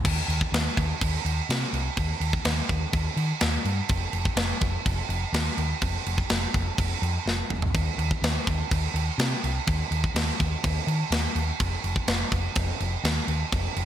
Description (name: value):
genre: hard rock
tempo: 125 BPM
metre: 4/4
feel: straight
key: unclear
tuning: A4 = 440 Hz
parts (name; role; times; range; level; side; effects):
- hollow-body short-scale fingered electric bass; bass; 0.0-13.8 s; F1 to Eb3; -27 LUFS; equal; none
- tight metal drum kit; drums; 0.0-13.8 s; crash cymbal, kick drum, snare drum, toms; -26 LUFS; right 1 dB; none
room: light reverb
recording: none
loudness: -24 LUFS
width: side -11 dB against mid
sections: 0.0-13.8 A section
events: drum fill 7.3-7.7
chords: none